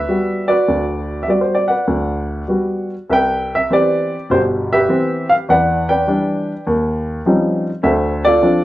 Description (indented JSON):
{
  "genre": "solo jazz",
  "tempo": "101 BPM",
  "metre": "4/4",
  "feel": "swing 69% on 8ths, rubato",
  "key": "G major, C major from 3.1 s",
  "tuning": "A4 = 438 Hz",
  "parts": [
    { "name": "warm baby grand piano", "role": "solo", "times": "0.0-8.6 s", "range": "G1 to G5", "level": "-14 LUFS", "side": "equal", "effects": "none" }
  ],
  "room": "light reverb",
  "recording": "worn, warbling old tape, cassette tape, warbly pitch drift",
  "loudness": "-14 LUFS",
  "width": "side -15 dB against mid",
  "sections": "0.0-3.1 A section; 3.1-8.6 B section",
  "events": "none",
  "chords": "0.0 Gmaj7; 3.1 Cmaj7; 5.5 Em7; 6.7 Eb13; 7.9 Dm7"
}